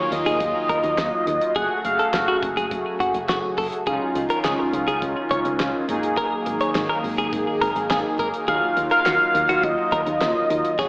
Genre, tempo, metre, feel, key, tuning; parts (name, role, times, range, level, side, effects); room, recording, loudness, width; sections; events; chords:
synth-pop; 104 BPM; 4/4; straight; A4 = 439 Hz
octave-doubled lead; melody; 0.0-2.4, 8.5-10.9 s; Db5 to Gb5; -21 LUFS; equal; chorus, tape echo
analog synth brass; accompaniment; 0.0-10.9 s; Gb3 to Ab4; -26 LUFS; equal; chorus
phased analog pad; sustained chords; 0.0-10.9 s; Db3 to Ab4; -28 LUFS; equal; phaser, chorus
solid FM bass; bass; 0.1-10.9 s; Gb1 to Eb2; -31 LUFS; equal
damped 70s drum kit; drums; 0.1-10.9 s; handclaps, hi-hat, kick drum, snare drum; -30 LUFS; equal
direct-recorded clean electric guitar; second line; 0.3-10.9 s; Gb4 to Db5; -25 LUFS; equal; phaser, tape echo
wet plate reverb, RT60 1.2 s; dreamy mix soaked in reverb, AM radio sound; -19 LUFS; side -38 dB against mid
0.0-10.9 A section
0.0 Ebmadd9; 1.6 Gbmadd9; 3.9 Dbadd9; 5.9 Absus2; 8.5 Ebmadd9